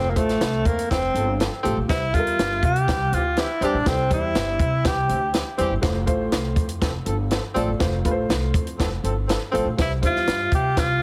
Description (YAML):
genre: uptempo 1960s-style soul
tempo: 122 BPM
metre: 4/4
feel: straight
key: F major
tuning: A4 = 439 Hz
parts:
  - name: breathy tenor saxophone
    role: melody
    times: 0.0-5.3, 9.8-11.0 s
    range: A3 to G4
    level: -26 LUFS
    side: equal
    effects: tape echo
  - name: dark upright piano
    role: accompaniment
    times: 0.0-10.6 s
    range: G3 to E5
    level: -29 LUFS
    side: equal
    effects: none
  - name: upright bass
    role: bass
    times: 0.0-11.0 s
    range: F1 to C3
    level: -29 LUFS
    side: equal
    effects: none
  - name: compact cocktail drum kit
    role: drums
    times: 0.2-10.9 s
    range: hi-hat, kick drum, snare drum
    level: -27 LUFS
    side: equal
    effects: none
  - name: warm horn section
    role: second line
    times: 0.9-10.9 s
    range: E3 to A4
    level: -33 LUFS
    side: equal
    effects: none
room: light reverb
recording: heavily compressed radio sound, multiband compression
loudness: -22 LUFS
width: mono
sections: 0.0-11.0 A section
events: none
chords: 0.0 F; 1.9 C; 5.8 F; 9.8 C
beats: 0.41 0.91 1.40 | 1.89 2.38 2.88 3.37 | 3.86 4.36 4.85 5.34 | 5.83 6.33 6.82 7.31 | 7.80 8.30 8.79 9.28 | 9.78 10.27 10.77